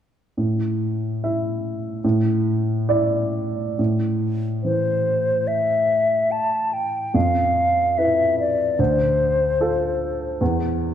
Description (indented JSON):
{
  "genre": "classical, impressionist duo for flute and grand piano",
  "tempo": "72 BPM",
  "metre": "4/4",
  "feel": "uneven beats, rubato",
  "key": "A minor",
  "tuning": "A4 = 440 Hz",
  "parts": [
    { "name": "warm baby grand piano", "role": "accompaniment", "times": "0.4-10.9 s", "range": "D2 to E5", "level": "-22 LUFS", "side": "right 1 dB", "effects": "none" },
    { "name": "mellow hollow silver concert flute", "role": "melody", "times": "4.6-10.4 s", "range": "C5 to A5", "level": "-19 LUFS", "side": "left 2 dB", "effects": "none" }
  ],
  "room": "wet scoring stage reverb, RT60 1.7 s",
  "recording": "dark, warm production",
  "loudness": "-19 LUFS",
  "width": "side -9 dB against mid",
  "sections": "0.4-3.8 A section; 3.8-10.9 B section",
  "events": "none",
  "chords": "0.4 A5; 2.0 Dsus2/A; 3.8 Am; 7.1 Dm69/F; 8.8 Dm7; 10.4 N.C."
}